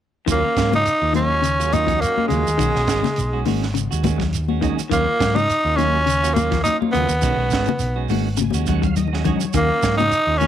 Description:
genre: afrobeat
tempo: 104 BPM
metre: 4/4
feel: swing 54% on 16ths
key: Eb minor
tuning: A4 = 439 Hz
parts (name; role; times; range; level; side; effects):
- growling tenor saxophone; melody; 0.3-10.5 s; Ab3 to Eb4; -19 LUFS; equal; none
- percussive tonewheel organ; accompaniment; 0.3-10.5 s; Gb3 to G#5; -32 LUFS; right 10 dB; slow rotary speaker, overdrive, chorus vibrato
- clean electric guitar; arpeggios; 0.3-10.5 s; Db3 to F#3; -27 LUFS; left 10 dB; warbly pitch drift
- clean electric guitar; stabs; 0.3-10.5 s; D#3 to F#4; -27 LUFS; right 11 dB; none
- fingered electric bass; bass; 0.3-10.5 s; G#1 to Ab2; -23 LUFS; equal; none
- tight funk drum kit; drums; 0.3-10.5 s; hi-hat, kick drum, snare drum; -26 LUFS; right 3 dB; none
- shekere; percussion; 0.3-10.5 s; none; -30 LUFS; right 5 dB; none
- congas; percussion; 0.7-10.5 s; none; -24 LUFS; left 9 dB; none
room: light reverb, small room ambience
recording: 1960s-style stereo with parts hard left and right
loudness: -17 LUFS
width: side -10 dB against mid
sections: 0.3-10.5 A section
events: tonewheel organ fill 7.8-9.5; drum fill 8.4-9.5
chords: 0.3 Ebm9; 2.6 B69; 4.9 Ebm9; 7.2 B69; 9.5 Ebm9

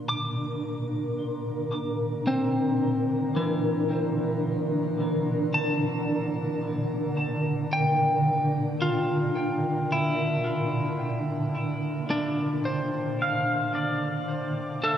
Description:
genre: ambient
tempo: 55 BPM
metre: 4/4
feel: straight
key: unclear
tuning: A4 = 445 Hz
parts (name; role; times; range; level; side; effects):
- granular cloud pad; sustained chords; 0.0-15.0 s; Bb2 to Bb4; -27 LUFS; equal; built-in reverb, shimmer reverb
- twelve-string electric guitar; arpeggios; 0.0-15.0 s; E3 to D6; -28 LUFS; equal; shimmer reverb, diffuse ambient delay
- pedal steel guitar; melody; 13.2-15.0 s; D5 to F5; -27 LUFS; equal; shimmer reverb, diffuse ambient delay
room: wet cathedral reverb, RT60 4.9 s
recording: cassette tape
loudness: -24 LUFS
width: side -9 dB against mid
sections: 0.0-15.0 A section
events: none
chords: 0.0 C9sus4/Bb

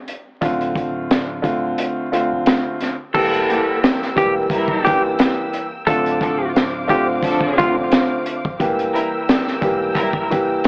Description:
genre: hip hop, boom-bap hip-hop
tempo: 88 BPM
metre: 4/4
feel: swing 55% on 16ths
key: unclear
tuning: A4 = 439 Hz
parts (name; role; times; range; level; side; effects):
- crunchy breakbeat drum kit; drums; 0.1-10.7 s; crash cymbal, hi-hat, kick drum, snare drum; -22 LUFS; equal; none
- warm grand piano; accompaniment; 0.4-10.7 s; D3 to G4; -23 LUFS; equal; cassette tape, high-pass filter, low-pass filter
- soft dub sub bass; bass; 0.4-9.9 s; D1 to F1; -38 LUFS; equal; none
- semi-hollow electric guitar; melody; 3.1-7.7 s; F4 to A4; -22 LUFS; equal; high-pass filter, low-pass filter, analog delay
- dark studio string section; sustained chords; 3.1-10.7 s; Bb4 to E6; -30 LUFS; equal; high-pass filter, low-pass filter
- dark studio string section; stabs; 3.5-10.3 s; E3 to Bb4; -27 LUFS; equal; high-pass filter, low-pass filter, analog delay
room: little or no reverb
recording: dry, gritty hardware recording, transformer saturation, vinyl crackle, AM radio sound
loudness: -19 LUFS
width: mono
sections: 0.0-3.1 A section; 3.1-10.7 B section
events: break 0.0-0.4; kick muted 1.8-3.1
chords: 0.4 Dm7; 3.1 Edim; 5.9 Dm7; 8.6 Edim

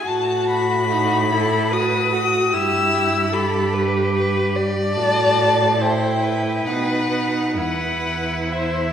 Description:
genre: classical, slow romantic movement for string quartet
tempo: 63-76 BPM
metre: 3/4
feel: rubato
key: E minor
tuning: A4 = 440 Hz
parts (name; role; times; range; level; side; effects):
- warm violin; melody; 0.0-8.9 s; E5 to E6; -22 LUFS; left 4 dB; none
- warm violin; second line; 0.0-8.9 s; F#4 to D5; -23 LUFS; left 1 dB; none
- rich viola; accompaniment; 0.0-8.9 s; D#4 to G4; -23 LUFS; right 2 dB; none
- rich cello; bass; 0.1-8.9 s; E2 to B2; -24 LUFS; right 3 dB; none
room: wet scoring stage reverb, RT60 1.8 s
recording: none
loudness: -17 LUFS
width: side -8 dB against mid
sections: 0.0-8.9 A section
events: none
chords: 0.1 B7/A; 2.5 Em/G; 5.0 Am13; 6.7 B; 7.6 E5

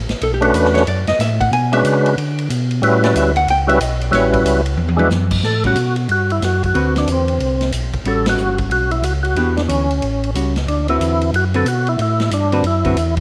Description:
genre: soul jazz organ trio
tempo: 184 BPM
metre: 4/4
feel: swing 63% on 8ths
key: A mixolydian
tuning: A4 = 441 Hz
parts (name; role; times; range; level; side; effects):
- mellow tonewheel organ; bass; 0.0-13.2 s; G1 to D3; -21 LUFS; equal; slow rotary speaker
- swinging big-band drum kit; drums; 0.1-13.2 s; crash cymbal, hi-hat, kick drum, ride cymbal, snare drum, toms; -28 LUFS; equal; none
- archtop guitar, miked and amplified; accompaniment; 0.2-13.0 s; D3 to G#5; -23 LUFS; equal; none
- overdriven tonewheel organ; melody; 0.4-13.1 s; G3 to B4; -20 LUFS; equal; slow rotary speaker, chorus vibrato
room: moderate spring reverb, RT60 1.8 s, small room ambience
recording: none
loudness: -17 LUFS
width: mono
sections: 0.0-5.4 A section; 5.4-13.2 B section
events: hollow-body jazz guitar solo 0.0-5.4; drum fill 4.8-5.1; band accent 8.2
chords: 0.2 Bm7; 1.5 Bm69; 2.8 A13; 4.8 E9; 5.4 A7sus2; 6.7 D13; 8.1 A13; 9.4 Em7; 10.0 A6; 10.7 D13

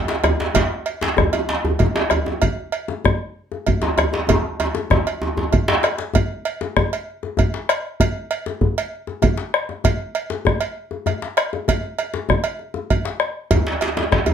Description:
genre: west african traditional, West African drum ensemble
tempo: 130 BPM (dotted quarters)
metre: 12/8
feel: straight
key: none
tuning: none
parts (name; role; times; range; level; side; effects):
- djembe; percussion; 0.1-14.3 s; none; -25 LUFS; left 7 dB; none
- djembe; percussion; 0.1-5.8, 13.5-14.3 s; none; -20 LUFS; right 1 dB; none
- bombo; percussion; 0.2-14.3 s; none; -19 LUFS; equal; none
- cowbell; percussion; 0.2-14.3 s; none; -24 LUFS; right 6 dB; none
room: moderate studio reverb, RT60 0.5 s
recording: none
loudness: -18 LUFS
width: side -8 dB against mid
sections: 0.0-6.1 A section; 6.1-14.3 B section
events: speeding up 0.0-14.3; drum fill 4.3-6.1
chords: none

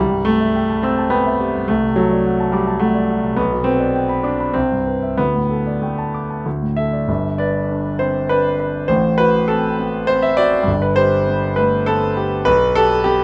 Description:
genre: classical, romantic character piece for solo piano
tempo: 93-108 BPM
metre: 3/4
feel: rubato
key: G major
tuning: A4 = 438 Hz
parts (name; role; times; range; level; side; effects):
- clear grand piano; solo; 0.0-13.2 s; G1 to E6; -18 LUFS; equal; none
room: light reverb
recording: close, detailed microphones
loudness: -18 LUFS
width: mono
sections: 0.0-7.1 A section; 7.1-13.2 B section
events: none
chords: 0.0 Am7/C; 1.7 D7/C; 3.4 G/B; 4.5 Cmaj7; 5.2 Dsus4; 6.5 D5; 7.1 G; 8.9 Am69; 10.7 G; 12.5 G/B

